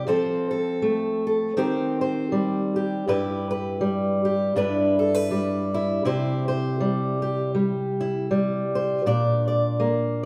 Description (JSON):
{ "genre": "folk, solo fingerstyle acoustic guitar", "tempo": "80 BPM", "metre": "4/4", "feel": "swing 58% on 8ths", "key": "unclear", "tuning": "A4 = 440 Hz", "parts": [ { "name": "fingerpicked steel-string acoustic guitar", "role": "solo", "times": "0.0-10.3 s", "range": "G2 to D5", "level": "-24 LUFS", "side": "equal", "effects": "none" } ], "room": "moderate recital hall reverb, RT60 1.4 s", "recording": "recorded in a church or concert hall", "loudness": "-24 LUFS", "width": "mono", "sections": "0.0-10.3 A section", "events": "none", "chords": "0.1 F; 1.6 Cm/Eb; 3.1 G6; 4.6 Em7/G; 6.1 C; 9.1 Bb", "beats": "| 0.08 0.82 1.57 2.32 | 3.06 3.81 4.56 5.31 | 6.06 6.81 7.56 8.30 | 9.05 9.80" }